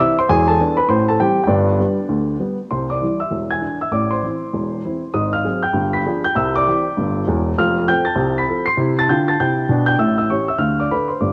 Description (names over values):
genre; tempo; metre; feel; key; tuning
jazz, stride piano; 198 BPM; 4/4; swing 62% on 8ths; C major; A4 = 439 Hz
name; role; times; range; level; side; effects
warm upright piano; solo; 0.0-11.3 s; E1 to C7; -18 LUFS; equal; cassette tape
room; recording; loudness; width
moderate lush hall reverb, RT60 2.1 s; home recording on cassette; -18 LUFS; mono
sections
0.0-2.7 A section; 2.7-11.3 B section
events
none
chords
0.3 E7; 0.9 Am7; 1.5 G; 2.7 C; 3.3 E7; 3.9 Am; 5.1 Ab7; 5.8 G7b9; 6.4 C; 7.6 F; 8.8 C; 10.0 A7; 10.6 Dm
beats
| 0.28 0.58 0.88 1.19 | 1.49 1.79 2.10 2.40 | 2.71 3.01 3.31 3.62 | 3.92 4.23 4.53 4.84 | 5.14 5.45 5.75 6.05 | 6.36 6.66 6.97 7.27 | 7.58 7.88 8.18 8.49 | 8.79 9.09 9.40 9.70 | 10.00 10.31 10.61 10.91 | 11.22